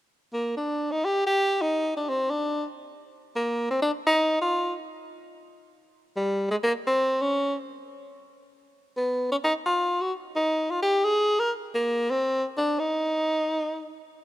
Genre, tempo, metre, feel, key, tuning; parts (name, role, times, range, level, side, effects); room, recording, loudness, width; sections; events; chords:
jazz; 172 BPM; 4/4; swing 64% on 8ths; Eb major; A4 = 443 Hz
bright tenor saxophone; solo; 0.3-14.0 s; G3 to Bb4; -24 LUFS; equal
light reverb, small room reverb; rough home demo mix; -23 LUFS; side -15 dB against mid
0.3-3.1 A section; 3.1-14.2 B section